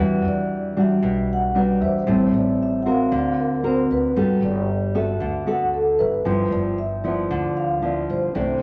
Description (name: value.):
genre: bossa nova.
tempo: 115 BPM.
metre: 4/4.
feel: straight.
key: unclear.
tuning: A4 = 437 Hz.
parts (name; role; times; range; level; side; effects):
vibraphone with medium mallets; melody; 0.0-8.6 s; A4 to F#5; -27 LUFS; equal; none.
nylon-string guitar; accompaniment; 0.0-8.6 s; G2 to A#4; -23 LUFS; equal; none.
warm baby grand piano; accompaniment; 0.0-8.6 s; C5 to G5; -37 LUFS; equal; none.
upright bass; bass; 0.0-8.6 s; G1 to E2; -31 LUFS; equal; none.
room: wet large studio reverb, RT60 1.4 s.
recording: none.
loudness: -21 LUFS.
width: mono.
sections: 0.0-8.6 A section.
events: none.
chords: 0.0 Em9; 2.1 Am7; 3.1 Daug7; 4.2 Gmaj9; 6.3 G6.